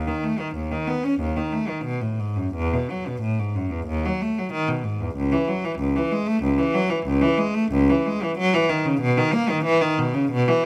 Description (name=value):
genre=classical, baroque-style suite movement for unaccompanied cello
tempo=93 BPM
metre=4/4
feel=rubato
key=unclear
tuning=A4 = 440 Hz
part: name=clear cello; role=solo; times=0.0-10.6 s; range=C#2 to C#4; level=-23 LUFS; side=equal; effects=none
room=light reverb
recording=close, detailed microphones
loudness=-23 LUFS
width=mono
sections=0.0-10.7 A section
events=none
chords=none